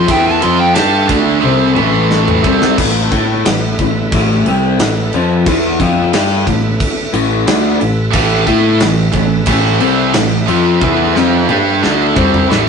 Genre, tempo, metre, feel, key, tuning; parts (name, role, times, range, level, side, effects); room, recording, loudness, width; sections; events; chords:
hard rock; 89 BPM; 4/4; straight; A minor; A4 = 440 Hz
dark smooth lead guitar; melody; 0.0-1.1 s; G5 to C6; -15 LUFS; equal; overdrive
overdriven tonewheel organ; sustained chords; 0.0-12.7 s; A3 to E5; -24 LUFS; right 1 dB; chorus vibrato, slow rotary speaker
high-gain distorted guitar; riff; 0.0-2.8, 8.1-12.7 s; A2 to A4; -15 LUFS; right 6 dB; distortion
overdriven semi-hollow guitar; riff; 0.0-12.7 s; A2 to A4; -14 LUFS; left 4 dB; phaser
modern bright picked electric bass; bass; 0.0-12.7 s; A1 to A2; -18 LUFS; right 1 dB
gated 80s drum kit; drums; 0.1-12.7 s; crash cymbal, kick drum, ride cymbal, snare drum, toms; -17 LUFS; equal
wet studio ambience, RT60 0.5 s; rough rehearsal-room recording, warm saturation, nothing above 10.4 kHz; -10 LUFS; side -6 dB against mid
0.0-2.8 A section; 2.8-12.7 B section
lead electric guitar solo 0.0-2.8; drum fill 1.4-2.8, 10.8-12.7
0.0 Am